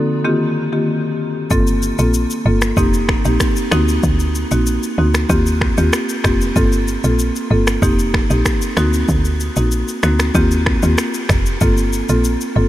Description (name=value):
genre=afrobeats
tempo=95 BPM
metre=4/4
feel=straight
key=G minor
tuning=A4 = 440 Hz
part: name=marimba with medium mallets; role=accompaniment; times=0.0-12.7 s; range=Eb3 to A4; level=-18 LUFS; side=equal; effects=none
part: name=woody log drum bass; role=bass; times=1.5-12.7 s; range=F1 to Eb2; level=-17 LUFS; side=equal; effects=none
part: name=afro-pop drum kit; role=drums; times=1.5-12.6 s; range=finger snaps, kick drum, rim click, shaker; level=-19 LUFS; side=equal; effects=none
room=moderate huge ambient reverb, RT60 7.9 s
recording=dreamy mix soaked in reverb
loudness=-14 LUFS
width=side -14 dB against mid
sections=0.0-1.5 A section; 1.5-12.7 B section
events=none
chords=0.2 Eb6; 1.5 Gm11; 2.8 F7sus4; 3.7 D7b9b13; 5.3 Eb6; 6.6 Gm11; 7.8 F7sus4; 8.8 D7b9b13; 10.3 Eb6; 11.6 Gm11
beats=0.24 0.88 | 1.51 2.14 2.77 3.40 | 4.03 4.67 5.30 5.93 | 6.56 7.19 7.82 8.46 | 9.09 9.72 10.35 10.98 | 11.61 12.24